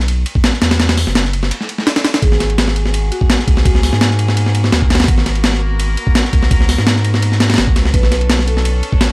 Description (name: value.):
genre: drum and bass, jungle.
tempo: 168 BPM.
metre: 4/4.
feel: straight.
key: G# minor.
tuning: A4 = 440 Hz.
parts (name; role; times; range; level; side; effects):
saturated sub bass; bass; 0.0-8.8 s; F#1 to G#2; -15 LUFS; equal; tube saturation.
breakbeat sampler-style drum kit; drums; 0.0-9.1 s; hi-hat, kick drum, ride cymbal, snare drum; -13 LUFS; equal; studio reverb.
marimba with soft mallets; melody; 2.2-4.0, 7.9-8.7 s; F#4 to B4; -24 LUFS; equal; dub echo.
rich chamber string section; sustained chords; 2.2-9.1 s; A#3 to A#4; -25 LUFS; left 1 dB; none.
room: little or no reverb.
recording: dry, gritty hardware recording, vinyl crackle.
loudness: -11 LUFS.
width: side -26 dB against mid.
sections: 0.0-9.1 A section.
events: none.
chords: 0.0 B5; 2.2 G#m9; 7.9 Bm9.